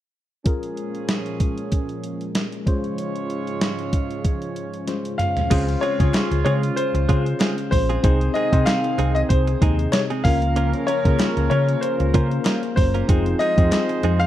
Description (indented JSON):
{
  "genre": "1980s-style pop",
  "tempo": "95 BPM",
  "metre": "4/4",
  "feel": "swing 55% on 16ths",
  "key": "Bb minor",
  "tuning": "A4 = 440 Hz",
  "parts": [
    { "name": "tine electric piano", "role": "accompaniment", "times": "0.4-14.3 s", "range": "C3 to Eb5", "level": "-27 LUFS", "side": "left 4 dB", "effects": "medium stereo tremolo" },
    { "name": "lush unison pad", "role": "sustained chords", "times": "0.5-14.3 s", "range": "Ab2 to Bb4", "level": "-31 LUFS", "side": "equal", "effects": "chorus" },
    { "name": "clear horn section", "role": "stabs", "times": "0.5-14.3 s", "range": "Db3 to Db5", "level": "-32 LUFS", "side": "right 8 dB", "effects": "slapback echo" },
    { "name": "gated 80s digital drum machine", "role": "drums", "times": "0.5-14.3 s", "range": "crash cymbal, hi-hat, kick drum, snare drum, toms", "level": "-21 LUFS", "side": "equal", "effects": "gated reverb, gated reverb snare" },
    { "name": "warm grand piano", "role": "melody", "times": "5.2-14.3 s", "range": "C5 to F5", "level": "-24 LUFS", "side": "left 2 dB", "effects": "slapback echo" },
    { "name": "direct-recorded clean electric guitar", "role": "riff", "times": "5.5-14.2 s", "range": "Ab3 to Bb4", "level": "-29 LUFS", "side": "right 7 dB", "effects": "wide subtle chorus, slapback echo" },
    { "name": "hollow-body short-scale fingered electric bass", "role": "bass", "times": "5.5-14.3 s", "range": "F1 to Db3", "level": "-22 LUFS", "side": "equal", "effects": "none" },
    { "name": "group handclap", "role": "percussion", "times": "6.1-13.9 s", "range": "none", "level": "-35 LUFS", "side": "left 8 dB", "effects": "none" }
  ],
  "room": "little or no reverb",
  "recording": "dry, close 1970s-style studio recording",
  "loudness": "-18 LUFS",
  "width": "side -12 dB against mid",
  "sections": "0.5-5.5 A section; 5.5-14.3 B section",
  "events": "drum fill 4.9-5.5",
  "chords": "0.5 Bbm7; 2.7 Dbmaj7/Ab; 5.5 Dbmaj7; 8.0 Ab/C; 10.2 Bbm/Db; 13.1 Fm7",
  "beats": "| 0.46 1.09 1.72 2.35 | 2.98 3.61 4.25 4.88 | 5.51 6.14 6.77 7.40 | 8.04 8.67 9.30 9.93 | 10.56 11.19 11.82 12.46 | 13.09 13.72"
}